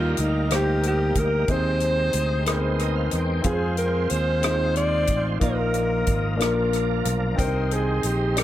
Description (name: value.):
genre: slow gospel.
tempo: 61 BPM (dotted quarters).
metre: 6/8.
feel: straight.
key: Eb major.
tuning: A4 = 441 Hz.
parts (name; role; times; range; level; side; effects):
breathy alto saxophone; melody; 0.0-8.4 s; Eb4 to D5; -26 LUFS; equal; analog delay.
warm concert grand piano; accompaniment; 0.0-8.4 s; Bb2 to G5; -27 LUFS; left 2 dB; analog delay.
bright tonewheel organ; sustained chords; 0.0-8.4 s; Eb3 to G5; -31 LUFS; right 2 dB; slow rotary speaker, overdrive, chorus vibrato.
fingered electric bass; bass; 0.0-8.4 s; Ab1 to F2; -25 LUFS; equal; none.
natural country drum kit; drums; 0.2-8.4 s; hi-hat, kick drum, rim click; -28 LUFS; equal; none.
room: light reverb, small room ambience.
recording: echo-heavy mix.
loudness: -20 LUFS.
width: side -13 dB against mid.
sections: 0.0-8.4 A section.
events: tonewheel organ fill 2.5-3.5.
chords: 0.0 Eb; 1.5 Ab; 3.5 Fm; 5.4 Bbsus4; 6.4 Bb; 7.4 Cm.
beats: 0.50 | 1.49 2.47 | 3.45 4.43 | 5.42 6.40 | 7.38 8.36.